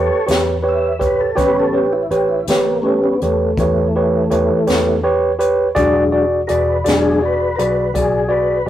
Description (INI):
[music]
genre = slow blues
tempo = 55 BPM (dotted quarters)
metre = 12/8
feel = straight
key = unclear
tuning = A4 = 441 Hz
[part]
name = barky tine electric piano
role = accompaniment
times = 0.0-8.7 s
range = F#4 to D5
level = -16 LUFS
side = right 1 dB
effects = none
[part]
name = tonewheel organ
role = sustained chords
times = 0.0-8.7 s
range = E3 to E5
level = -19 LUFS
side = left 2 dB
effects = chorus vibrato, slow rotary speaker
[part]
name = vintage muted fingered electric bass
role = bass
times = 0.0-8.7 s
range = E1 to E2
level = -24 LUFS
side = left 1 dB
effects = none
[part]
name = jazz brush drum kit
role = drums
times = 0.3-8.1 s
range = hi-hat, kick drum, snare drum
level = -22 LUFS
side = left 1 dB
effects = none
[sound]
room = moderate stone room reverb, RT60 1.1 s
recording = rough rehearsal-room recording, warm saturation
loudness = -14 LUFS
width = side -12 dB against mid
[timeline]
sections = 0.0-8.7 A section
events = tonewheel organ solo 0.0-8.7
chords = 0.0 A7; 5.8 E7